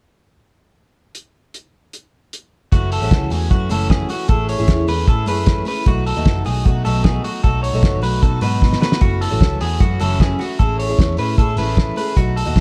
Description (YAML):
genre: jangly indie pop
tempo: 153 BPM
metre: 4/4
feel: straight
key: B mixolydian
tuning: A4 = 440 Hz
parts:
  - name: cloth-damped thuddy drum kit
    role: drums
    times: 1.1-12.6 s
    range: hi-hat, kick drum, snare drum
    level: -20 LUFS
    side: equal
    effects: none
  - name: picked twelve-string acoustic guitar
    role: accompaniment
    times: 2.7-12.6 s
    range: F#2 to G#4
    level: -26 LUFS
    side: equal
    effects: none
  - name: electric guitar through a small old amp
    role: arpeggios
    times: 2.7-12.6 s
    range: F#4 to C#5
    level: -26 LUFS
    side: equal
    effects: none
  - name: vintage muted picked electric bass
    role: bass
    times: 2.7-12.6 s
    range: F#1 to B2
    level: -23 LUFS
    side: equal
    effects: none
room: light reverb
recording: dark, warm production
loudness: -17 LUFS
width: mono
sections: 1.2-2.7 A section; 2.7-12.6 B section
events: drum fill 8.6-9.0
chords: 1.2 N.C.; 2.7 F#m7; 4.3 Amaj7; 5.9 B7; 9.0 F#m7; 10.6 Amaj7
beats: | 1.15 1.54 1.94 2.33 | 2.72 3.12 3.51 3.90 | 4.29 4.69 5.08 5.47 | 5.87 6.26 6.65 7.04 | 7.44 7.83 8.22 8.62 | 9.01 9.41 9.80 10.19 | 10.59 10.98 11.38 11.77 | 12.17 12.56